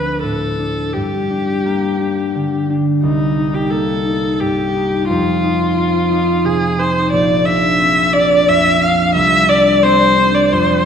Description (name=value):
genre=classical, impressionist duo for viola and harp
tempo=88 BPM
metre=3/4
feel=rubato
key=unclear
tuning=A4 = 440 Hz
part: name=warm viola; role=melody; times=0.0-10.9 s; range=Eb4 to F5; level=-15 LUFS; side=left 1 dB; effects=none
part: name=concert harp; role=accompaniment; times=0.0-10.9 s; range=Bb1 to Eb4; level=-16 LUFS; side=equal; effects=none
room=wet scoring stage reverb, RT60 1.4 s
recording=none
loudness=-12 LUFS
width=side -7 dB against mid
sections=0.0-10.9 A section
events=none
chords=0.0 Dm7; 0.9 Gm; 3.0 Cm7; 5.1 F5; 7.1 Bbadd9; 9.2 Csus2